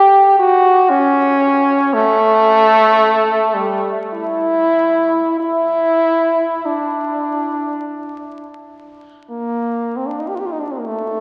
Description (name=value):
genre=classical, free, expressive piece for unaccompanied French horn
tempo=34-62 BPM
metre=3/4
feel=rubato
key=unclear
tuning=A4 = 441 Hz
part: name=clear French horn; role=solo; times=0.0-11.2 s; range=G3 to G4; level=-15 LUFS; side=equal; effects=none
room=wet cathedral reverb, RT60 4.4 s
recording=very old 78 rpm record, vinyl crackle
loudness=-15 LUFS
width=mono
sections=0.0-9.3 A section; 9.3-11.2 B section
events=none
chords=none